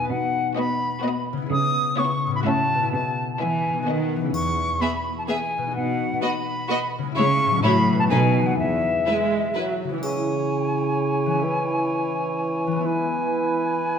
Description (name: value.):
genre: cinematic, playful, whimsical film cue.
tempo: 127 BPM.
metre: 3/4.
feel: straight.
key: E major, C# minor from 10.0 s.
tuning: A4 = 440 Hz.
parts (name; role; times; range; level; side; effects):
silver concert flute; second line; 0.0-14.0 s; E5 to D#6; -25 LUFS; left 1 dB; none.
concert harp; arpeggios; 0.0-14.0 s; A2 to B4; -28 LUFS; left 7 dB; none.
rich studio cello section; bass; 0.1-9.0 s; E2 to E3; -26 LUFS; right 4 dB; none.
rich studio violin section; melody; 0.6-9.6 s; B4 to E5; -33 LUFS; left 4 dB; none.
clear studio violin section; second line; 0.6-9.6 s; D#4 to G#4; -33 LUFS; left 2 dB; none.
warm studio viola section; accompaniment; 0.6-10.0 s; E3 to C#4; -29 LUFS; right 1 dB; none.
triangle; percussion; 4.3-5.2, 10.0-10.9 s; none; -42 LUFS; left 4 dB; none.
mellow clarinet; second line; 10.0-14.0 s; E4; -30 LUFS; left 1 dB; none.
mellow cor anglais; second line; 10.0-14.0 s; B4 to C#5; -30 LUFS; right 4 dB; none.
dark bassoon; accompaniment; 10.0-14.0 s; C#3 to E3; -26 LUFS; right 5 dB; none.
room: moderate scoring stage reverb, RT60 1.8 s.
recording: none.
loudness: -20 LUFS.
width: side -7 dB against mid.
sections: 0.0-10.0 A section; 10.0-14.0 B section.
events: none.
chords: 0.1 B; 1.5 C#m7; 2.4 F#m7/A; 2.9 E/B; 3.9 B; 4.3 E; 5.8 B; 7.2 C#m; 7.6 F#m7/A; 8.1 B7; 8.6 E; 10.0 C#m; 11.4 C#m/E; 12.8 E.